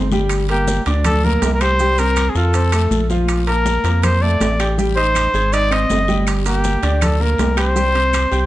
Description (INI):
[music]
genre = Afro-Cuban jazz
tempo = 161 BPM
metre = 4/4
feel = straight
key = unclear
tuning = A4 = 440 Hz
[part]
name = warm trumpet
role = melody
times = 0.0-8.5 s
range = Eb4 to Eb5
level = -19 LUFS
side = left 1 dB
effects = none
[part]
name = clear concert grand piano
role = accompaniment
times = 0.0-8.5 s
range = F3 to Ab6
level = -22 LUFS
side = right 1 dB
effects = none
[part]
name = rubbery square bass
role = bass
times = 0.0-8.5 s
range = G1 to F2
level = -18 LUFS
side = equal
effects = none
[part]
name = congas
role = percussion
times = 0.1-8.5 s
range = none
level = -25 LUFS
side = left 1 dB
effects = none
[part]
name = guiro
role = percussion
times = 0.1-8.5 s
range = none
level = -33 LUFS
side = left 9 dB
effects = none
[part]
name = maracas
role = percussion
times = 0.1-8.5 s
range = none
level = -34 LUFS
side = right 9 dB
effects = none
[part]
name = claves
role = percussion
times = 0.3-8.3 s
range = none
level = -33 LUFS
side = left 7 dB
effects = none
[part]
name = timbales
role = percussion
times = 0.3-8.3 s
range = none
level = -27 LUFS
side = right 5 dB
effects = none
[sound]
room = light reverb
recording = nothing above 10.8 kHz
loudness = -14 LUFS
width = side -15 dB against mid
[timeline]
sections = 0.0-8.5 A section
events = none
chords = 0.3 Gm; 1.8 C5; 2.5 F; 3.3 Bbmaj7; 4.8 Am7b5; 5.5 Ab; 6.3 Gm; 7.8 C5